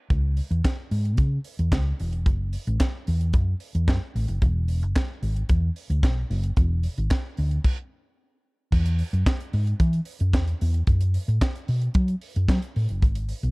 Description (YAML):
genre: disco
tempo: 112 BPM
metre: 4/4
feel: straight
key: unclear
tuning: A4 = 440 Hz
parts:
  - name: hollow-body short-scale fingered electric bass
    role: bass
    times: 0.1-13.5 s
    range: E1 to F#3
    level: -23 LUFS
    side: equal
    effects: none
  - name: tight funk drum kit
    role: drums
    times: 0.1-13.5 s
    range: crash cymbal, handclaps, hi-hat, kick drum, snare drum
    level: -22 LUFS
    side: equal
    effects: none
room: little or no reverb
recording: dark, warm production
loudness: -22 LUFS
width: side -28 dB against mid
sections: 0.1-8.7 A section; 8.7-13.5 B section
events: stop 7.7-8.7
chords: none